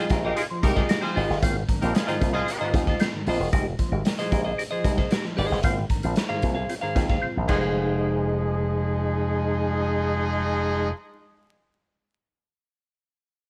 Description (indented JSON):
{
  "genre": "funk",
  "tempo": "113 BPM",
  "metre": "4/4",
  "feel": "straight",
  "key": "F minor",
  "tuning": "A4 = 436 Hz",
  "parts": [
    { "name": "clear horn section", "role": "second line", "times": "0.0-2.7, 7.5-10.9 s", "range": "F3 to C5", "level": "-32 LUFS", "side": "equal", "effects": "none" },
    { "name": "clean electric guitar", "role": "accompaniment", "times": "0.0-11.0 s", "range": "Eb4 to F5", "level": "-32 LUFS", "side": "equal", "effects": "none" },
    { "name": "percussive tonewheel organ", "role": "stabs", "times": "0.0-10.9 s", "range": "Ab2 to Ab4", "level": "-32 LUFS", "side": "equal", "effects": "chorus vibrato, slow rotary speaker" },
    { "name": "slap bass with an envelope filter", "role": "bass", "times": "0.1-10.9 s", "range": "E1 to Eb2", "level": "-29 LUFS", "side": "equal", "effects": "none" },
    { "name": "raw garage drum kit", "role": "drums", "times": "0.1-7.6 s", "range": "crash cymbal, hi-hat, kick drum, snare drum", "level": "-28 LUFS", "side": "equal", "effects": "none" }
  ],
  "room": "little or no reverb",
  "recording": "vinyl crackle",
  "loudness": "-25 LUFS",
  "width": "mono",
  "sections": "0.0-7.8 A section; 7.8-12.0 B section",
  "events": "drum fill 7.2-7.8",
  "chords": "0.0 Fm7; 1.4 Ab6; 3.5 Fm7; 5.6 Ab6; 7.5 Fm7"
}